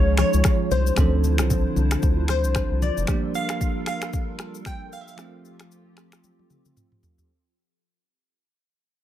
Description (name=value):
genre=afrobeats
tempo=114 BPM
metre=4/4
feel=swing 58% on 16ths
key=F major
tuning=A4 = 440 Hz
part: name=glassy wavetable pluck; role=melody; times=0.0-7.0 s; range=C5 to G5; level=-28 LUFS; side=left 1 dB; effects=chorus, ping-pong delay, plate reverb
part: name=bell-like tine electric piano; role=accompaniment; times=0.0-7.3 s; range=E3 to A4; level=-30 LUFS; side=right 6 dB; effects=none
part: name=hollow soft pad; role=sustained chords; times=0.0-7.3 s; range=D3 to Db5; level=-31 LUFS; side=left 3 dB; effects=ensemble chorus, plate reverb
part: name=round analog bass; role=bass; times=0.0-3.1 s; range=F1 to D2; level=-21 LUFS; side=equal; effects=none
part: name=afro-pop drum kit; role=drums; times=0.2-7.3 s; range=finger snaps, kick drum, rim click, shaker, toms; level=-24 LUFS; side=left 1 dB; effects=none
part: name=congas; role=percussion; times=0.2-3.0 s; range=none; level=-31 LUFS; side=left 4 dB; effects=none
room=light reverb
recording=none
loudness=-20 LUFS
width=side -12 dB against mid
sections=0.0-7.3 A section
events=fade-out 0.0-7.3; drum fill 6.2-7.3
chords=0.0 Dbmaj7; 1.0 Dm7; 3.1 Gm7; 5.2 F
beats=0.45 | 0.97 1.50 2.03 2.55 | 3.08 3.61 4.13 4.66 | 5.19 5.71 6.24 6.76